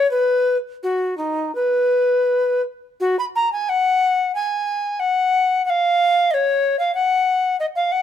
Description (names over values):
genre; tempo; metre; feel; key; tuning
classical, baroque-style fantasia for unaccompanied recorder; 79-94 BPM; 4/4; rubato; B major, F# major from 3.0 s; A4 = 439 Hz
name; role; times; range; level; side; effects
tenor recorder; solo; 0.0-8.0 s; D#4 to B5; -17 LUFS; left 1 dB; none
room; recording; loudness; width
light reverb; minimal, uncompressed stereo recording; -17 LUFS; side -9 dB against mid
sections
0.0-3.0 A section; 3.0-8.0 A section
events
none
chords
none